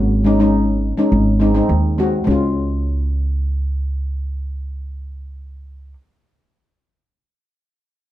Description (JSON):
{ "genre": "calypso", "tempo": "103 BPM", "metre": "4/4", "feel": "swing 53% on 16ths", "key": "Db major", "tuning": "A4 = 440 Hz", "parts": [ { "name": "upright bass", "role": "bass", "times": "0.0-5.9 s", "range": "Ab1 to Eb2", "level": "-19 LUFS", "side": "right 1 dB", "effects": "none" }, { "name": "steel pan", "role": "accompaniment", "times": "0.2-6.0 s", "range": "Ab3 to Gb4", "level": "-17 LUFS", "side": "left 2 dB", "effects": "none" } ], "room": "light reverb", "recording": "none", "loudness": "-15 LUFS", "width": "side -13 dB against mid", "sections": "0.0-2.3 A section; 2.3-4.6 B section", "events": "none", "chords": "0.0 Absus4; 1.1 Ab; 2.3 Db", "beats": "0.53 1.11 1.70 | 2.27 2.85 3.44 4.01" }